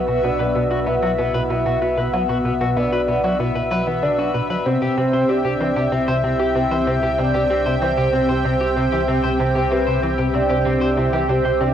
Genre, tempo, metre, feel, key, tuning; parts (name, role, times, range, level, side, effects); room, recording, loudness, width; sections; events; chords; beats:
ambient, sequencer-driven space music; 95 BPM; 4/4; straight; A4 = 440 Hz
soft octave-layered synth lead; melody; 0.0-11.7 s; B4 to F#5; -23 LUFS; equal; chorus, phaser, cassette tape, ping-pong delay
lush unison pad; sustained chords; 0.0-11.7 s; B2 to G5; -21 LUFS; equal; chorus, cassette tape, plate reverb
semi-hollow electric guitar; arpeggios; 0.0-11.7 s; B3 to C5; -26 LUFS; left 2 dB; auto-pan, cassette tape, plate reverb, ping-pong delay
tight sequencer bass; riff; 0.0-11.7 s; B2 to G4; -23 LUFS; equal; cassette tape, ping-pong delay
warm sub bass; bass; 0.0-11.7 s; B1 to C2; -30 LUFS; equal; tube saturation
wet small room reverb, RT60 0.5 s; home recording on cassette; -17 LUFS; side -9 dB against mid
0.0-11.7 A section
0.0 Bm; 4.7 C
0.24 0.87 1.50 | 2.13 2.76 3.40 4.03 | 4.66 5.29 5.92 6.55 | 7.18 7.82 8.45 9.08 | 9.71 10.34 10.97 11.61